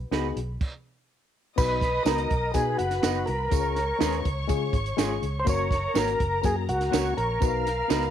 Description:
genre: uptempo 1960s-style soul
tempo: 124 BPM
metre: 4/4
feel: straight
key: unclear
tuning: A4 = 440 Hz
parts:
  - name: vintage muted fingered electric bass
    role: bass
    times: 0.0-8.1 s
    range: Gb1 to Db3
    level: -30 LUFS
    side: equal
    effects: none
  - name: reed electric piano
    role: accompaniment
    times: 0.1-8.1 s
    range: Ab3 to Cb5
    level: -31 LUFS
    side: left 12 dB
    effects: fast tremolo
  - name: electric guitar through a small old amp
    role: stabs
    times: 0.1-8.0 s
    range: Ab3 to Cb5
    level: -34 LUFS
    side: right 11 dB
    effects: none
  - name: compact cocktail drum kit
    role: drums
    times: 0.1-8.1 s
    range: crash cymbal, hi-hat, kick drum, snare drum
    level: -28 LUFS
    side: right 2 dB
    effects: none
  - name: percussive tonewheel organ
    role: melody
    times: 1.6-8.1 s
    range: Gb4 to Db5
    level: -27 LUFS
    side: equal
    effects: overdrive, chorus vibrato, slapback echo
  - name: warm studio violin section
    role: second line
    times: 1.6-8.1 s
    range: Bb4 to F6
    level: -35 LUFS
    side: left 2 dB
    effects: none
  - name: tambourine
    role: percussion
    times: 1.6-8.0 s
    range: none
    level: -40 LUFS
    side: right 13 dB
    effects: none
room: light reverb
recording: 1960s-style stereo with parts hard left and right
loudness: -23 LUFS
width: side -10 dB against mid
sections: 0.0-1.6 A section; 1.6-8.1 B section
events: stop 0.6-1.6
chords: 0.0 Cb; 3.5 Db; 5.5 Gb; 7.4 Cb

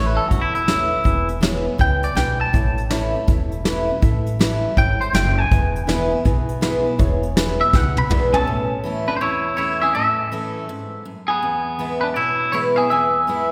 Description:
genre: honky-tonk and classic country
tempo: 162 BPM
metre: 4/4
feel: swing 64% on 8ths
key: A major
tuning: A4 = 439 Hz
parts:
  - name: twangy electric guitar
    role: melody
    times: 0.0-13.5 s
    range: B3 to B5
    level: -23 LUFS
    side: equal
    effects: none
  - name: picked steel-string acoustic guitar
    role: accompaniment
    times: 0.0-13.5 s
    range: E2 to E4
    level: -27 LUFS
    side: equal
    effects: none
  - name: warm upright piano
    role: accompaniment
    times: 0.0-8.4 s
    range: E4 to E5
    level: -30 LUFS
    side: equal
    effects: none
  - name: upright bass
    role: bass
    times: 0.0-8.4 s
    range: E1 to C#2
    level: -26 LUFS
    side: equal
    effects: none
  - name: soft brush drum kit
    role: drums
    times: 0.3-8.4 s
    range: hi-hat, kick drum, snare drum, toms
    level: -23 LUFS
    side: equal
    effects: none
room: wet concert hall reverb, RT60 1.9 s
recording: recorded in a church or concert hall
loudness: -19 LUFS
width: mono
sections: 0.0-8.5 A section; 8.5-13.5 B section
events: clean electric guitar solo 0.0-8.5; drum fill 7.7-8.5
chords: 0.0 A; 1.1 E; 2.5 A; 5.5 E; 8.5 A; 11.4 E

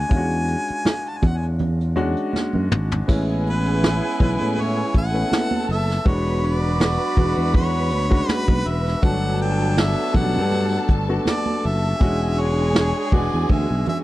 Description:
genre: lush 1970s-style soul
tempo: 81 BPM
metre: 4/4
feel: swing 54% on 16ths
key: A major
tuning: A4 = 441 Hz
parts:
  - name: clear harmonica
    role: melody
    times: 0.0-14.0 s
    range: B4 to A5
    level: -27 LUFS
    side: equal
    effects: none
  - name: warm concert grand piano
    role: accompaniment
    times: 0.0-14.0 s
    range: F#3 to F#4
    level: -26 LUFS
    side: left 1 dB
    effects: none
  - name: fingered electric bass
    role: bass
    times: 0.0-13.8 s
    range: E1 to A2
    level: -22 LUFS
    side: equal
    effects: none
  - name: vintage brush drum kit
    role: drums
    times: 0.1-14.0 s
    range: crash cymbal, hi-hat, kick drum, snare drum, toms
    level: -18 LUFS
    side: equal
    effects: none
  - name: congas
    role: percussion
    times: 0.1-14.0 s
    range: none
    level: -29 LUFS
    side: right 4 dB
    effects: none
  - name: warm studio string section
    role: second line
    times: 3.1-14.0 s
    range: G#4 to B5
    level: -30 LUFS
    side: right 1 dB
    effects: none
  - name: warm horn section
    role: stabs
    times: 3.1-14.0 s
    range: F#3 to G#4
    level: -28 LUFS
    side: right 1 dB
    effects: none
room: studio reverb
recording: dry, close 1970s-style studio recording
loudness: -18 LUFS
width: side -16 dB against mid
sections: 0.0-3.1 A section; 3.1-14.0 B section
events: drum fill 2.3-3.1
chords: 0.0 E13; 3.1 Amaj9; 6.1 E13; 9.0 Gmaj7; 12.0 E13

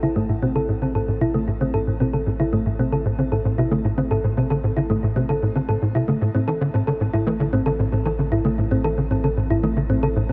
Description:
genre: ambient, sequencer-driven space music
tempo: 114 BPM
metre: 4/4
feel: straight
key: A minor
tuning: A4 = 440 Hz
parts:
  - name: thumb-piano-like synth pluck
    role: arpeggios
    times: 0.0-10.3 s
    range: A3 to A4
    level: -26 LUFS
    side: equal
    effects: chorus, shimmer reverb, tape echo
  - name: tight sequencer bass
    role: riff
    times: 0.0-10.3 s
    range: A2 to E3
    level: -24 LUFS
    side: equal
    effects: ensemble chorus, tape echo
  - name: warm sub bass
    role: bass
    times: 0.0-10.3 s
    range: A1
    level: -32 LUFS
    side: equal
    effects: none
room: moderate huge ambient reverb, RT60 7.9 s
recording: none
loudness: -21 LUFS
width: mono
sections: 0.0-10.3 A section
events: filter sweep on analog synth bass 0.0-10.3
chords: 0.0 Am

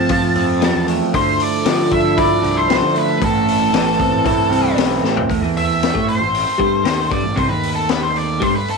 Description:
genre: psychedelic rock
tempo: 115 BPM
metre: 4/4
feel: straight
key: A minor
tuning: A4 = 441 Hz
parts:
  - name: octave-fuzz lead guitar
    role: melody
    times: 0.0-8.8 s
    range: A4 to A5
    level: -19 LUFS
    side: left 1 dB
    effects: distortion, slapback echo
  - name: pedal harmonium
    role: sustained chords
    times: 0.0-8.8 s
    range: E3 to A4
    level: -27 LUFS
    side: right 13 dB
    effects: none
  - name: electric guitar through a small old amp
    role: riff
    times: 0.0-8.5 s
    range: F2 to F4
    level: -18 LUFS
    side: right 2 dB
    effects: flanger
  - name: fuzz picked electric bass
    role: bass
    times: 0.0-8.5 s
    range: A1 to F3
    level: -25 LUFS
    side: equal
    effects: overdrive
  - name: raw garage drum kit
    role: drums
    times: 0.1-8.8 s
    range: hi-hat, kick drum, snare drum, toms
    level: -21 LUFS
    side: left 6 dB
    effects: none
room: light reverb, small room ambience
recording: 1960s-style stereo with parts hard left and right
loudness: -14 LUFS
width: side -4 dB against mid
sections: 0.0-5.3 A section; 5.3-8.8 B section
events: drum fill 5.0; lead electric guitar solo 5.3-8.8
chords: 0.0 F; 1.1 Dmadd9; 3.2 Am

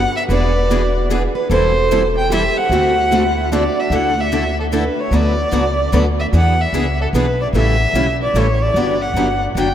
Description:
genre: acoustic string swing (jazz manouche)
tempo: 149 BPM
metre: 3/4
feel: swing 61% on 8ths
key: D major from 3.9 s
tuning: A4 = 440 Hz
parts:
  - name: warm violin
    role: melody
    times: 0.0-9.7 s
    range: A4 to G5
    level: -18 LUFS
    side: equal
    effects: none
  - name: picked plugged-in steel-string acoustic guitar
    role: second line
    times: 0.0-3.9 s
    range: D4 to B4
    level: -23 LUFS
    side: right 2 dB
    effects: none
  - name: upright bass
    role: bass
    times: 0.0-9.7 s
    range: E1 to E2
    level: -19 LUFS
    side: equal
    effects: none
  - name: picked steel-string acoustic guitar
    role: accompaniment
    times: 0.3-9.7 s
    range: C#3 to A4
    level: -22 LUFS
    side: left 4 dB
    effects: none
  - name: picked steel-string acoustic guitar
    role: accompaniment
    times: 0.3-9.7 s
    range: D3 to B4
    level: -23 LUFS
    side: right 4 dB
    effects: none
room: wet cathedral reverb, RT60 6.2 s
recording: in a vast, echoing space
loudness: -14 LUFS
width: side -10 dB against mid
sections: 0.0-3.9 A section; 3.9-9.7 B section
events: none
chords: 0.3 E7; 1.5 Am7/E; 2.7 D7; 3.9 Dsus2; 5.1 Bm7; 6.3 E7; 7.5 A7; 8.7 Gmaj7

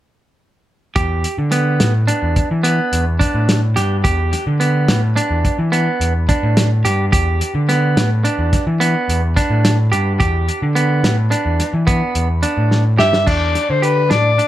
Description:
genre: progressive instrumental, band music in an uneven meter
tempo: 215 BPM (eighths)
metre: 11/8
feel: straight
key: E minor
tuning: A4 = 440 Hz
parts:
  - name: semi-hollow electric guitar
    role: arpeggios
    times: 1.0-14.5 s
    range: B3 to G4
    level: -19 LUFS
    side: right 2 dB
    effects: spring reverb, ping-pong delay
  - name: overdriven picked electric bass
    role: bass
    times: 1.0-14.4 s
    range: E2 to E3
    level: -16 LUFS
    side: equal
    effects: none
  - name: warm soul drum kit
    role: drums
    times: 1.0-14.5 s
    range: crash cymbal, hi-hat, kick drum, snare drum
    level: -19 LUFS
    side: equal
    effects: none
  - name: mellow soprano saxophone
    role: melody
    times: 13.0-14.5 s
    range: B4 to E5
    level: -15 LUFS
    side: left 3 dB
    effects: none
room: light reverb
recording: none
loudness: -14 LUFS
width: side -13 dB against mid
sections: 1.0-13.3 A section; 13.3-14.5 B section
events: drum fill 12.7-13.3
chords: 1.0 Em7

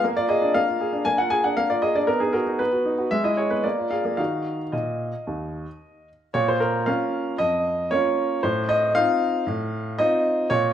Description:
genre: classical-period piano sonatina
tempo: 116 BPM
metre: 4/4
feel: rubato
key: Eb minor, Bb minor from 6.3 s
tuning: A4 = 440 Hz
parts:
  - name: clear baby grand piano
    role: solo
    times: 0.0-10.7 s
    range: Eb2 to Ab5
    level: -20 LUFS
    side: equal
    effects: none
room: moderate large studio reverb, RT60 1.2 s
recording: none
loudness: -20 LUFS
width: side -10 dB against mid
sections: 0.0-6.3 A section; 6.3-10.7 B section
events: none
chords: 0.0 Bb7; 2.1 B; 3.1 E/G#; 3.6 Bb7; 4.2 Ebm; 6.3 Bbm; 8.4 F7/A

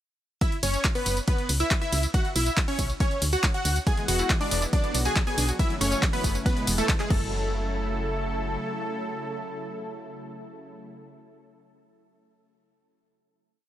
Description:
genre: uplifting trance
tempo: 139 BPM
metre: 4/4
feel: straight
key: F# minor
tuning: A4 = 441 Hz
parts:
  - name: supersaw stab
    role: melody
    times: 0.4-10.9 s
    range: G#3 to G#5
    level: -29 LUFS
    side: equal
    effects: sidechain pumping, tape echo
  - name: electronic kick drum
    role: drums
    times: 0.4-7.2 s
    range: none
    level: -25 LUFS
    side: equal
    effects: overdrive, small room ambience
  - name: punchy analog drum machine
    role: drums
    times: 0.4-7.2 s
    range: crash cymbal, handclaps, hi-hat, ride cymbal, tambourine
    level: -29 LUFS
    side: equal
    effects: overdrive, sidechain pumping on hats, small room ambience, sidechain pumping on cymbals, sidechain pumping on perc
  - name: solid FM bass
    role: bass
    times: 0.6-8.6 s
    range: E1 to D2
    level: -28 LUFS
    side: equal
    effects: sidechain pumping
  - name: lush unison pad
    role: sustained chords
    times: 3.9-10.9 s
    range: B2 to G#4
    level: -35 LUFS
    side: equal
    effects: chorus, sidechain pumping
  - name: wide unison pluck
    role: arpeggios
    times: 3.9-7.5 s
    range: E3 to F#4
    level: -36 LUFS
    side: left 3 dB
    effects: cassette tape, sidechain pumping, tape echo
room: little or no reverb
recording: none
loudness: -23 LUFS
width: side -12 dB against mid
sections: 0.4-7.3 drop; 7.3-10.8 final hit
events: drop 0.4-7.3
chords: 0.4 F#5; 1.3 C#m; 2.1 B5; 3.0 Dmaj7; 3.9 E; 4.7 Bm; 5.6 F#m7; 6.5 E; 7.1 F#m7

